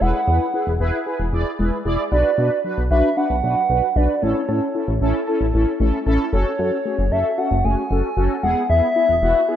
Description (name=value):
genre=pop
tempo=114 BPM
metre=4/4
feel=straight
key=unclear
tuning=A4 = 441 Hz
part: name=hollow clarinet-like synth lead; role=melody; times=0.0-9.6 s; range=C#5 to G#5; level=-20 LUFS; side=equal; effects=chorus, slapback echo
part: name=mellow synth brass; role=accompaniment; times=0.0-9.6 s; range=B3 to D5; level=-23 LUFS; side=equal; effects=chorus, phaser
part: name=soft round pluck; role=arpeggios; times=0.0-9.6 s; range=F#3 to A5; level=-30 LUFS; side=left 3 dB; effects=chorus, slapback echo
part: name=chorused synth bass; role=bass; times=0.0-9.3 s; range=E1 to B2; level=-20 LUFS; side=equal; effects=none
room=moderate plate reverb, RT60 2.4 s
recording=rough home demo mix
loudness=-17 LUFS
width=side -10 dB against mid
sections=0.0-9.6 A section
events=none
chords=0.0 Eadd9; 2.1 Bm; 4.2 A; 6.3 F#madd9; 8.4 Eadd9